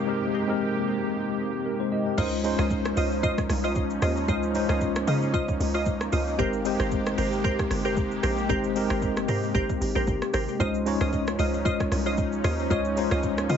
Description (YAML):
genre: amapiano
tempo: 114 BPM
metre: 4/4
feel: swing 55% on 16ths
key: unclear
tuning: A4 = 440 Hz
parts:
  - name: mellow tine electric piano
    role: accompaniment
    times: 0.0-13.6 s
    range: Ab3 to G5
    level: -28 LUFS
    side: left 2 dB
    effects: medium stereo tremolo
  - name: lush unison pad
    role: sustained chords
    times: 0.0-13.6 s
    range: C3 to C5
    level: -32 LUFS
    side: right 1 dB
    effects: chorus, phaser, sidechain pumping
  - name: glassy wavetable pluck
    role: stabs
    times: 2.2-13.6 s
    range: F4 to Eb5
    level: -30 LUFS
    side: equal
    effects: chorus, ping-pong delay
  - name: tight log drum bass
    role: bass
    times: 2.2-13.6 s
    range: G1 to Db3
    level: -29 LUFS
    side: right 1 dB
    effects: none
  - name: smooth R&B drum kit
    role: drums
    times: 2.2-13.6 s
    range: crash cymbal, hi-hat, kick drum, rim click, shaker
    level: -31 LUFS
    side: right 1 dB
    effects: overdrive
room: moderate small room reverb, RT60 0.5 s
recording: heavily compressed radio sound, nothing above 7.8 kHz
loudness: -23 LUFS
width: side -8 dB against mid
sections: 0.0-2.2 A section; 2.2-13.6 B section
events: break 0.1-2.2; drop 2.2-13.6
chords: 0.0 Abmaj9; 2.2 Dbmaj9; 6.4 Abmaj9; 10.6 Dbmaj9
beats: | 0.08 0.60 1.13 1.66 | 2.18 2.71 3.23 3.76 | 4.29 4.81 5.34 5.87 | 6.39 6.92 7.44 7.97 | 8.50 9.02 9.55 10.08 | 10.60 11.13 11.65 12.18 | 12.71 13.23